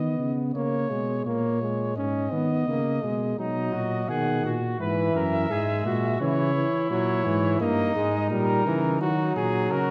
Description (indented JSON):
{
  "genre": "classical, imitative canzona for brass ensemble",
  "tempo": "85 BPM",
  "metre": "4/4",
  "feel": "straight",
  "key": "unclear",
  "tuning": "A4 = 441 Hz",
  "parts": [
    { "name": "mellow trumpet", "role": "melody", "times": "0.0-9.9 s", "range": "F#4 to F#5", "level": "-32 LUFS", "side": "equal", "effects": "none" },
    { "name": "clear trombone", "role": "accompaniment", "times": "0.0-9.9 s", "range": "D#3 to C#4", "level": "-30 LUFS", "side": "equal", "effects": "none" },
    { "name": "mellow tuba", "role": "bass", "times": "0.0-9.9 s", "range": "F#2 to D#3", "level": "-30 LUFS", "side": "equal", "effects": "none" },
    { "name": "warm flugelhorn", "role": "second line", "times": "3.4-9.9 s", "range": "D#4 to B4", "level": "-33 LUFS", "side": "equal", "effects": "none" }
  ],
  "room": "wet recital hall reverb, RT60 1.5 s",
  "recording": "none",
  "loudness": "-25 LUFS",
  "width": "mono",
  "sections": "0.0-9.9 A section",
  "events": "none",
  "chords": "0.0 B; 0.5 C#5; 2.0 G#m; 3.4 B; 4.8 E; 6.2 A#dim/C#; 7.6 D#/G; 9.0 D#m"
}